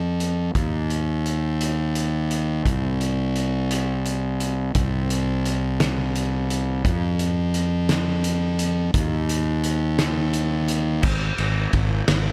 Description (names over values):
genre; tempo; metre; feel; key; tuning
post-rock; 57 BPM (dotted quarters); 6/8; straight; C minor; A4 = 439 Hz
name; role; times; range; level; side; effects
fuzz fingered electric bass; bass; 0.0-12.3 s; Ab1 to F2; -24 LUFS; equal; overdrive
loose indie drum kit; drums; 0.2-12.2 s; crash cymbal, hi-hat, kick drum, ride cymbal, snare drum; -28 LUFS; equal; none
room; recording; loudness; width
little or no reverb; none; -23 LUFS; mono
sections
0.0-11.0 A section; 11.0-12.3 B section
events
build-up 11.0-12.3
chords
none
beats
| 0.55 1.60 | 2.65 3.70 | 4.75 5.80 | 6.85 7.90 | 8.95 9.99 | 11.04 12.08